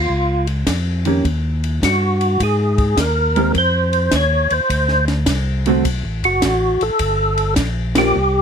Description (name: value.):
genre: soul jazz organ trio.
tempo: 104 BPM.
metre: 4/4.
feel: swing 67% on 8ths.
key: unclear.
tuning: A4 = 440 Hz.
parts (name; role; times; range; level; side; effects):
percussive tonewheel organ; melody; 0.0-8.4 s; F4 to Db5; -17 LUFS; equal; slow rotary speaker, chorus vibrato.
tonewheel organ; bass; 0.0-8.4 s; F#1 to Ab2; -19 LUFS; equal; overdrive.
compact cocktail drum kit; drums; 0.5-8.0 s; hi-hat, kick drum, ride cymbal, snare drum; -23 LUFS; equal; none.
vintage hollow-body jazz guitar; accompaniment; 1.1-8.1 s; D3 to Bb4; -17 LUFS; right 3 dB; none.
room: little or no reverb.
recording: close, detailed microphones.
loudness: -15 LUFS.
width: side -7 dB against mid.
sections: 0.0-8.4 A section.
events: band accent 7.9.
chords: 0.1 Bbm; 1.2 Eb; 2.4 Abadd9; 4.7 D7; 7.0 Gm7.